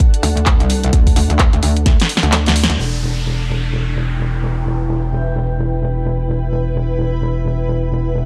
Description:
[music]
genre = bass house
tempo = 129 BPM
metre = 4/4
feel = swing 59% on 16ths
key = E minor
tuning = A4 = 440 Hz
[part]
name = electronic kick drum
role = drums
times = 0.0-2.0 s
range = none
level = -15 LUFS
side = equal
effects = none
[part]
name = house drum kit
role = drums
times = 0.0-2.9 s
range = crash cymbal, handclaps, hi-hat, snare drum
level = -21 LUFS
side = equal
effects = low-pass filter on hats, low-pass filter on snare, low-pass filter on cymbals
[part]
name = granular cloud pad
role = texture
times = 0.0-8.3 s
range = D4 to G5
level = -28 LUFS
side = equal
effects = built-in reverb, sidechain pumping
[part]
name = metallic wobble bass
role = bass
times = 0.2-8.3 s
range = E1 to D2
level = -19 LUFS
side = equal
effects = chorus, tube saturation, sidechain pumping
[part]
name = downlifter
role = sound effects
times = 2.8-6.5 s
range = none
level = -33 LUFS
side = equal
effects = none
[sound]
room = little or no reverb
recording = none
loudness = -17 LUFS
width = mono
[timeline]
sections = 0.0-2.8 A section; 2.8-8.3 B section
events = drum fill 1.9-2.8; kick drops out 2.3-2.8; band accent 2.6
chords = 0.0 D; 2.8 Em

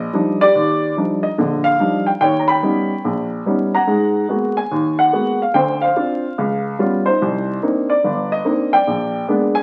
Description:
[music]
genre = solo jazz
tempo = 144 BPM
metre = 4/4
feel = swing 66% on 8ths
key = Eb major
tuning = A4 = 441 Hz
[part]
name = warm baby grand piano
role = solo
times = 0.0-9.6 s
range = G1 to Cb6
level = -18 LUFS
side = equal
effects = none
[sound]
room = wet studio reverb, RT60 0.6 s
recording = very old 78 rpm record, vinyl crackle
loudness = -18 LUFS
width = mono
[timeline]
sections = 0.5-9.6 A section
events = none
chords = 0.0 Ebmaj9; 2.2 Eb7b13; 3.9 Abm9; 5.5 Dm7; 6.4 Db7#11; 7.2 Cm9; 8.9 Bb7b9

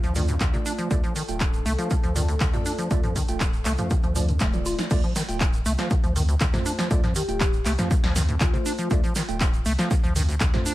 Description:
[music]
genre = acid house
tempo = 120 BPM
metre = 4/4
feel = straight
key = D phrygian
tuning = A4 = 441 Hz
[part]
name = dark analog pad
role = sustained chords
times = 0.0-4.9 s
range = A3 to A4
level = -37 LUFS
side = left 2 dB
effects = chorus, sidechain pumping
[part]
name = acid bass, square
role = riff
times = 0.0-10.7 s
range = D2 to F4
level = -29 LUFS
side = equal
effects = overdrive, tape echo
[part]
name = saturated sub bass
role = bass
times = 0.0-10.5 s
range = D1 to D2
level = -27 LUFS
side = equal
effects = sidechain pumping
[part]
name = punchy analog drum machine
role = drums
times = 0.0-10.7 s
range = crash cymbal, handclaps, hi-hat, snare drum, toms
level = -29 LUFS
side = equal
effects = none
[part]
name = tube shaker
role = percussion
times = 0.0-10.7 s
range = none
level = -36 LUFS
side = right 4 dB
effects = none
[part]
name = bell-like tine electric piano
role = stabs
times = 0.2-10.7 s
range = A3 to G5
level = -33 LUFS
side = right 3 dB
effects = fast stereo tremolo, vintage 12-bit sampler grit, tape echo
[part]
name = electronic kick drum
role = drums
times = 0.4-10.5 s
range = none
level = -23 LUFS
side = equal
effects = none
[part]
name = vibraphone with soft mallets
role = melody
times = 7.2-8.9 s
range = F4 to G4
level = -33 LUFS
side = left 4 dB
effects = tape echo
[sound]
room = little or no reverb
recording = none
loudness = -21 LUFS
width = side -16 dB against mid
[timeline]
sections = 0.0-4.9 A section; 4.9-10.7 B section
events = drum fill 4.4-4.9; band accent 4.8; drop 4.9-10.7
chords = 0.0 Dm

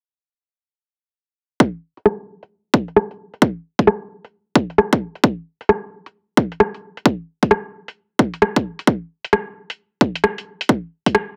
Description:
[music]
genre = UK garage, two-step garage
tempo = 132 BPM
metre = 4/4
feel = swing 64% on 16ths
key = none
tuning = none
[part]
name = electronic kick drum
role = drums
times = 1.6-11.1 s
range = none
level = -17 LUFS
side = equal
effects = overdrive, high-pass filter on kick
[part]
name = house drum kit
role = drums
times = 2.0-11.3 s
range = hi-hat, rim click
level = -18 LUFS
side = equal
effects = overdrive, low-pass filter on hats, low-pass filter on snare
[sound]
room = light reverb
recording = dense, heavily limited modern master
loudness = -20 LUFS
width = mono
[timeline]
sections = 1.6-11.4 A section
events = filter sweep on drum 1.6-11.4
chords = none

